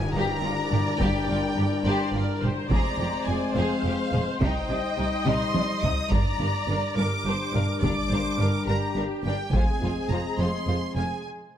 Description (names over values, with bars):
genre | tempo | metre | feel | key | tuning
cinematic, epic orchestral film score | 70 BPM (dotted quarters) | 6/8 | straight | G phrygian | A4 = 442 Hz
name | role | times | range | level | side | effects
warm symphonic violin section | melody | 0.0-11.2 s | D5 to Eb6 | -32 LUFS | left 1 dB | none
rich symphonic violin section | second line | 0.0-11.0 s | D4 to C5 | -34 LUFS | left 2 dB | none
mellow French horn section | sustained chords | 0.0-11.2 s | G3 to Eb4 | -31 LUFS | left 4 dB | none
sub drop | sound effects | 0.0-1.0 s | none | -42 LUFS | equal | none
rich symphonic double bass section | bass | 0.1-11.0 s | F1 to C2 | -30 LUFS | right 2 dB | none
rich symphonic viola section | accompaniment | 0.2-11.2 s | G4 to Eb5 | -33 LUFS | equal | none
clear symphonic cello section | bass | 0.2-11.0 s | F2 to C3 | -31 LUFS | right 1 dB | none
taiko ensemble | drums | 0.7-10.1 s | none | -28 LUFS | equal | none
room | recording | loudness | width
moderate recital hall reverb, RT60 1.7 s | close, detailed microphones | -23 LUFS | side -10 dB against mid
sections
0.0-11.6 A section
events
impact 0.0-1.0; drum fill 5.3-6.1; break 11.2-11.6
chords
0.0 Gm; 2.7 Fm; 4.4 Cm; 6.1 Gm; 9.5 Fm